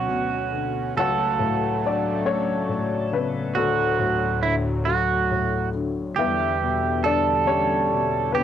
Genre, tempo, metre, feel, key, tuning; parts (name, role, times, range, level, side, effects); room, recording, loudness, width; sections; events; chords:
acoustic folk-pop ballad; 46 BPM (dotted quarters); 6/8; straight; E dorian; A4 = 440 Hz
dark upright piano; melody; 0.0-8.4 s; C#2 to F#5; -24 LUFS; left 5 dB; cassette tape
pedal steel guitar; second line; 0.0-8.4 s; E4 to A4; -24 LUFS; right 7 dB; cassette tape
brassy analog pad; sustained chords; 0.0-8.4 s; D2 to C#4; -29 LUFS; equal; chorus, cassette tape
wet small room reverb, RT60 0.5 s; home recording on cassette, faint mains hum; -20 LUFS; side -9 dB against mid
0.0-8.4 A section
0.0 Bmadd9/D; 1.0 F#m/C#; 3.6 D; 6.2 Em7